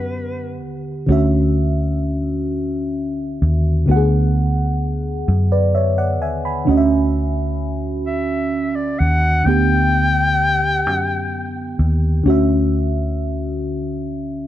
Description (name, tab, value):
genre	slow six-eight R&B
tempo	43 BPM (dotted quarters)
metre	6/8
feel	straight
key	D major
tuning	A4 = 441 Hz
part	breathy clarinet	melody	0.0-0.6, 8.1-11.8 s	B4 to G5	-20 LUFS	left 1 dB	slapback echo
part	mellow FM electric piano	accompaniment	0.0-14.5 s	D3 to B5	-20 LUFS	equal	chorus, phaser
part	vintage muted fingered electric bass	bass	0.0-14.5 s	D2 to F#2	-19 LUFS	equal	none
room	light reverb, small room ambience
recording	dark, warm production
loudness	-16 LUFS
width	side -12 dB against mid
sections	0.0-14.5 A section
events	none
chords	0.0 Gmaj7; 1.1 Dmaj9; 3.9 E13/D; 9.5 Gmaj7/D; 12.2 Dmaj9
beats	| 1.08 2.48 | 3.87 5.27 | 6.66 8.06 | 9.45 10.85 | 12.24 13.64